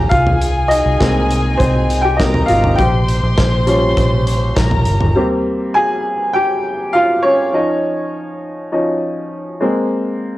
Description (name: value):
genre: piano-driven pop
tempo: 101 BPM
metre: 4/4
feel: straight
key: Ab major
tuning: A4 = 436 Hz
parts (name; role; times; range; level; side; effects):
- warm chamber violin section; second line; 0.0-5.2 s; Ab4 to C6; -21 LUFS; left 2 dB; none
- bright upright piano; accompaniment; 0.0-10.4 s; F3 to Ab5; -16 LUFS; equal; none
- vintage muted fingered electric bass; bass; 0.0-5.1 s; G1 to C2; -16 LUFS; equal; none
- modern studio drum kit; drums; 0.1-5.2 s; hi-hat, kick drum, snare drum, toms; -19 LUFS; equal; cassette tape
room: light reverb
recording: home recording on cassette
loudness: -13 LUFS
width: side -16 dB against mid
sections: 0.0-5.2 A section; 5.2-10.4 B section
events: upright piano solo 0.0-5.2, 5.2-10.4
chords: 0.1 Abmaj7/C; 2.8 Bbm69; 5.2 Abmaj7; 7.5 Dbadd9; 9.6 Ab